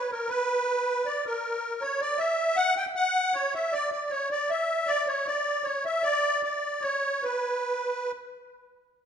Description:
musette; 156 BPM; 3/4; straight; A4 = 440 Hz
musette accordion; solo; 0.0-8.1 s; A#4 to G5; -25 LUFS; equal
wet recital hall reverb, RT60 1.8 s; minimal, uncompressed stereo recording; -25 LUFS; side -8 dB against mid
0.0-8.7 A section
slowing down 6.0-8.7

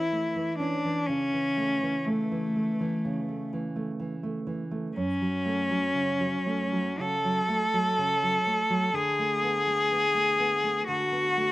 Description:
romantic duo for cello and classical guitar; 62 BPM; 4/4; rubato; A major; A4 = 440 Hz
clear cello; melody; 0.0-11.5 s; A3 to A4; -26 LUFS; left 1 dB; slapback echo
nylon-string guitar; accompaniment; 0.0-11.5 s; F#2 to C#4; -31 LUFS; right 2 dB
light reverb; recorded outdoors, with no room sound; -25 LUFS; side -17 dB against mid
0.0-11.5 A section
0.0 A; 1.1 A/C#; 5.0 F#m; 8.9 Bm7/D

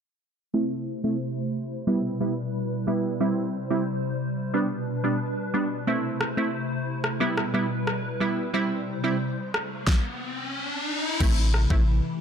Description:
dancehall; 90 BPM; 4/4; straight; A4 = 439 Hz
wavetable chord stab; accompaniment; 0.5-11.8 s; G3 to E4; -26 LUFS; right 2 dB; sidechain pumping, low-pass filter
hollow soft pad; sustained chords; 0.5-12.2 s; B2 to C5; -30 LUFS; left 1 dB; ensemble chorus, sidechain pumping, low-pass filter
pop drum kit; drums; 6.2-11.9 s; crash cymbal, kick drum, rim click, snare drum; -26 LUFS; equal; overdrive
riser; sound effects; 9.6-11.2 s; -31 LUFS; left 2 dB
punchy sub bass; bass; 11.2-12.0 s; A1; -22 LUFS; equal
light reverb; -24 LUFS; side -7 dB against mid
0.5-11.2 A section; 11.2-12.2 B section
filter sweep 0.5-11.2; riser 9.6-11.2
0.5 Am; 1.9 Em; 3.2 C; 4.5 G; 5.9 Am; 7.2 Em; 8.5 C; 9.9 N.C.; 11.2 Am

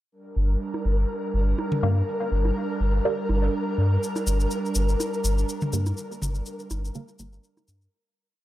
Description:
dub techno; 123 BPM; 4/4; swing 55% on 16ths; G minor; A4 = 439 Hz
airy breathy pad; sustained chords; 0.1-7.9 s; G3 to Bb4; -30 LUFS; right 1 dB; chorus
flickering grainy texture; texture; 0.5-7.9 s; Bb4; -34 LUFS; right 1 dB; built-in reverb
warm sub bass; bass; 0.4-7.9 s; G1 to G2; -23 LUFS; equal; tube saturation
electronic bongos and toms; percussion; 0.7-7.7 s; -32 LUFS; equal; dub echo
filtered dub chord stab; stabs; 1.8-7.9 s; D3 to Bb3; -30 LUFS; right 1 dB; phaser, cassette tape, dub echo
cabasa; percussion; 4.0-7.9 s; -34 LUFS; left 2 dB
digital ambience; dry, gritty hardware recording, transformer saturation; -23 LUFS; side -14 dB against mid
0.1-7.9 groove
filter sweep on synth stab 0.1-7.9; fade-out 5.3-7.9
0.1 Gm

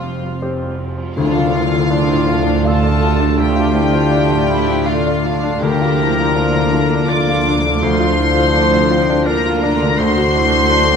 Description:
cinematic, emotional film score for orchestra; 82 BPM; 3/4; rubato; D minor; A4 = 441 Hz
warm studio violin section; melody; 0.0-11.0 s; F5 to D6; -20 LUFS; left 3 dB
warm symphonic violin section; second line; 0.0-11.0 s; C4 to G4; -23 LUFS; left 1 dB
clear baby grand piano; accompaniment; 0.0-11.0 s; D2 to F5; -20 LUFS; left 2 dB
dark symphonic viola section; accompaniment; 0.0-11.0 s; D3 to F4; -24 LUFS; right 4 dB
concert harp; arpeggios; 0.0-11.0 s; D3 to F5; -22 LUFS; left 4 dB
dark symphonic double bass section; bass; 0.0-11.0 s; F1 to D2; -22 LUFS; right 4 dB
warm chamber cello section; bass; 0.0-11.0 s; D2 to F2; -24 LUFS; right 6 dB
clear clarinet; second line; 1.2-11.0 s; F4 to D5; -22 LUFS; left 1 dB
mellow French horn section; sustained chords; 1.2-11.0 s; F3 to D4; -23 LUFS; left 2 dB
tam-tam; percussion; 1.2-4.1 s; -29 LUFS; right 1 dB
wet scoring stage reverb, RT60 1.6 s; minimal, uncompressed stereo recording; -13 LUFS; side -6 dB against mid
0.0-1.2 A section; 1.2-11.0 B section
band accent 1.2-1.9
0.0 Fsus2; 1.2 Dm; 5.6 Bb/D; 10.0 D7

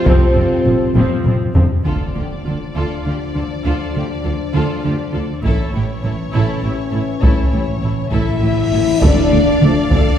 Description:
cinematic, epic orchestral film score; 67 BPM (dotted quarters); 6/8; straight; D minor; A4 = 439 Hz
warm symphonic violin section; melody; 0.0-10.2 s; C4 to E5; -28 LUFS; left 3 dB
rich symphonic violin section; second line; 0.0-10.2 s; C4 to F5; -30 LUFS; left 3 dB
dark trombone section; sustained chords; 0.0-1.5, 9.6-9.7 s; C3 to A3; -23 LUFS; right 1 dB
warm French horn section; sustained chords; 0.0-10.2 s; E3 to F4; -20 LUFS; left 4 dB
warm trumpet section; stabs; 0.0-1.0, 9.6-9.7 s; A4 to D5; -31 LUFS; right 2 dB
rich symphonic viola section; accompaniment; 0.1-10.2 s; F3 to A4; -27 LUFS; right 1 dB
rich symphonic cello section; bass; 0.1-10.0 s; D2 to D3; -23 LUFS; right 2 dB
warm symphonic double bass section; bass; 0.1-10.0 s; F1 to D2; -22 LUFS; right 2 dB
taiko ensemble; drums; 0.1-10.2 s; -16 LUFS; equal
impact and cymbal swell; sound effects; 1.9-3.6, 8.4-10.2 s; -27 LUFS; equal
timpani; percussion; 5.4-9.0 s; A2; -24 LUFS; right 2 dB
wet concert hall reverb, RT60 1.9 s; heard from further back in the room; -14 LUFS; side -10 dB against mid
0.0-1.9 A section; 1.9-9.0 B section; 9.0-10.2 C section
drum fill 1.0-1.9; impact 1.9-3.6, 9.0-10.2; timpani fill 5.4-9.0; cymbal swell 8.4-9.0
0.0 F; 1.9 Dm; 5.4 A; 9.0 Dm

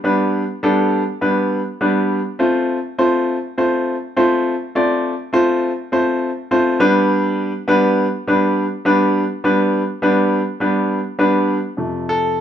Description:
soul; 102 BPM; 4/4; straight; G mixolydian; A4 = 439 Hz
clear grand piano; solo; 0.0-12.4 s; F2 to D5; -15 LUFS; equal
wet studio reverb, RT60 0.8 s; band playing live in one room; -15 LUFS; side -10 dB against mid
0.0-11.8 A section
0.0 G; 2.4 F; 6.8 G; 11.8 F

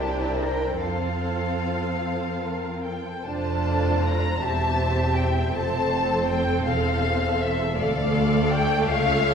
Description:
classical, slow romantic movement for string orchestra; 47-56 BPM (dotted quarters); 6/8; rubato; F major; A4 = 440 Hz
rich studio violin section; melody; 0.0-9.3 s; E5 to Bb5; -27 LUFS; left 3 dB
rich chamber violin section; second line; 0.0-9.3 s; A4 to E5; -30 LUFS; left 1 dB
rich chamber viola section; accompaniment; 0.0-9.3 s; A3 to A4; -28 LUFS; right 1 dB
rich chamber cello section; bass; 0.0-9.3 s; C#2 to Bb4; -28 LUFS; right 1 dB
rich chamber double bass section; bass; 0.0-9.3 s; E1 to F2; -29 LUFS; right 1 dB
wet scoring stage reverb, RT60 1.8 s; heard from further back in the room; -22 LUFS; side -7 dB against mid
0.0-3.2 A section; 3.2-9.3 B section
0.0 C9; 0.8 F; 4.4 C/E; 5.5 F; 7.8 Dm

